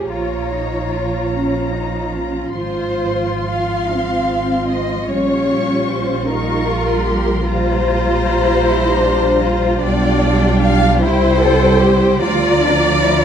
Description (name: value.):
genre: classical, slow romantic movement for string orchestra.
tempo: 50 BPM (dotted quarters).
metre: 6/8.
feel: rubato.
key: unclear.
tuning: A4 = 440 Hz.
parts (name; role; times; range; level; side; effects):
warm studio violin section; melody; 0.0-13.2 s; G5 to Db6; -27 LUFS; left 5 dB; none.
dark studio violin section; second line; 0.0-13.2 s; Bb4 to F5; -19 LUFS; left 2 dB; none.
rich studio viola section; accompaniment; 0.0-13.2 s; F3 to F4; -20 LUFS; right 1 dB; none.
rich studio double bass section; bass; 0.0-13.2 s; Ab1 to D2; -20 LUFS; right 2 dB; none.
warm studio cello section; bass; 0.0-13.2 s; C4 to A4; -21 LUFS; equal; none.
room: wet recital hall reverb, RT60 1.6 s.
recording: dark, warm production.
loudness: -14 LUFS.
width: side -8 dB against mid.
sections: 0.0-13.2 A section.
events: none.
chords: 0.1 Bbm; 2.6 Fm/Ab; 5.1 Gm7b5/Bb; 7.5 Gm7/Bb; 9.8 G7/B; 11.0 C; 12.2 Bb/D.